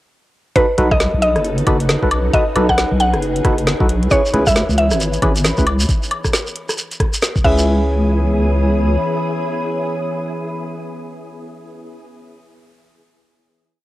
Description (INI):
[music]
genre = UK garage, two-step garage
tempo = 135 BPM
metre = 4/4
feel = swing 61% on 16ths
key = C# minor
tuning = A4 = 440 Hz
[part]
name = mallet-like synth pluck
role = melody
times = 0.6-12.4 s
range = B4 to F#5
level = -18 LUFS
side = equal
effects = chorus, cassette tape, analog delay
[part]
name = soft string machine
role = sustained chords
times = 1.1-12.0 s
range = B3 to D#6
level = -28 LUFS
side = equal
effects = ensemble chorus, sidechain pumping, cassette tape
[part]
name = percussive organ stab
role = stabs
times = 0.6-12.4 s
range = C#4 to B4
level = -22 LUFS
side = equal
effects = chorus, cassette tape, analog delay
[part]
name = electronic kick drum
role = drums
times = 0.6-7.6 s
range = none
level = -18 LUFS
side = equal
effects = cassette tape
[part]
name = garage drum kit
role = drums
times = 0.6-7.6 s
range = crash cymbal, hi-hat, rim click, snare drum, woodblock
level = -21 LUFS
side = equal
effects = cassette tape
[part]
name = warbly tape-like pad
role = texture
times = 1.3-12.0 s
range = E3 to B5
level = -26 LUFS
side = left 1 dB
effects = chorus, built-in reverb, sidechain pumping, cassette tape
[part]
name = deep soft wobble bass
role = bass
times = 0.8-9.0 s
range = F#1 to C#2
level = -17 LUFS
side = equal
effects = chorus
[part]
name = shekere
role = percussion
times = 4.1-7.7 s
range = none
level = -24 LUFS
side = right 1 dB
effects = none
[sound]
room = moderate spring reverb, RT60 2.2 s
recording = home recording on cassette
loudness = -14 LUFS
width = side -16 dB against mid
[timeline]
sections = 0.6-7.7 drop; 7.7-11.2 final note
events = drop 0.6-7.7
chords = 0.6 B7; 4.1 C#m7